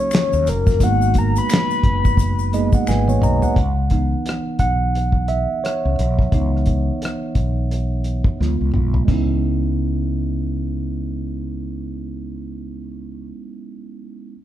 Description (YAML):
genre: R&B, neo-soul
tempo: 87 BPM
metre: 4/4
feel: swing 59% on 16ths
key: C# dorian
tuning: A4 = 436 Hz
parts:
  - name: soft octave-layered synth lead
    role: melody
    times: 0.0-2.7 s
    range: A#4 to B5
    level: -21 LUFS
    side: left 5 dB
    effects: chorus
  - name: mellow tine electric piano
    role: accompaniment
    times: 0.0-14.4 s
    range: E3 to A#5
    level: -24 LUFS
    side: right 3 dB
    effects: none
  - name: cloth-damped thuddy drum kit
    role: drums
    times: 0.1-9.3 s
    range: finger snaps, hi-hat, kick drum, rim click, snare drum, splash cymbal, toms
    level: -19 LUFS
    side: equal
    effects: none
  - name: finger snaps and maracas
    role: percussion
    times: 0.1-3.6 s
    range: none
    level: -35 LUFS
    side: left 4 dB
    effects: none
  - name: mellow fretless electric bass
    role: bass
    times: 0.3-13.3 s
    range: F#1 to D#2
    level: -21 LUFS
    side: equal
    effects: none
room: moderate large studio reverb, RT60 1.1 s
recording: band playing live in one room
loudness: -17 LUFS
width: side -12 dB against mid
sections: 0.0-3.6 A section; 3.6-9.1 B section; 9.1-11.8 C section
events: tine electric piano fill 2.2-3.6; drum fill 2.9-3.6, 8.4-9.1; tine electric piano solo 3.6-9.1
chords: 0.0 D#m7; 0.8 G#m9; 3.6 C#m9; 8.4 Ddim7; 9.1 C#m9